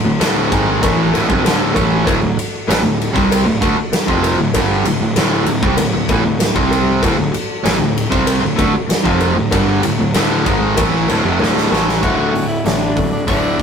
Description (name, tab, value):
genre	classic rock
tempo	96 BPM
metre	4/4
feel	straight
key	D mixolydian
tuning	A4 = 440 Hz
part	tonewheel organ	sustained chords	0.0-12.0 s	D4 to G5	-30 LUFS	left 4 dB	none
part	cranked stack guitar	riff	0.0-13.6 s	D2 to C4	-20 LUFS	left 6 dB	overdrive
part	distorted electric guitar	riff	0.0-13.6 s	D2 to C4	-18 LUFS	right 5 dB	overdrive
part	fuzz picked electric bass	bass	0.0-13.6 s	D1 to D2	-21 LUFS	equal	overdrive
part	big rock drum kit	drums	0.2-13.6 s	crash cymbal, hi-hat, kick drum, ride cymbal, snare drum	-19 LUFS	equal	none
part	cowbell	percussion	0.2-11.9 s	none	-25 LUFS	left 2 dB	none
part	raspy tenor saxophone	melody	12.0-13.6 s	D4 to F#4	-21 LUFS	left 2 dB	none
part	picked swing-style acoustic guitar	accompaniment	12.0-13.6 s	D3 to A4	-23 LUFS	left 4 dB	none
room	moderate stone room reverb, RT60 0.9 s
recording	rough rehearsal-room recording, tube saturation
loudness	-13 LUFS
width	side -7 dB against mid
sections	0.0-12.0 A section; 12.0-13.6 B section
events	drum fill 11.4-12.0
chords	0.0 D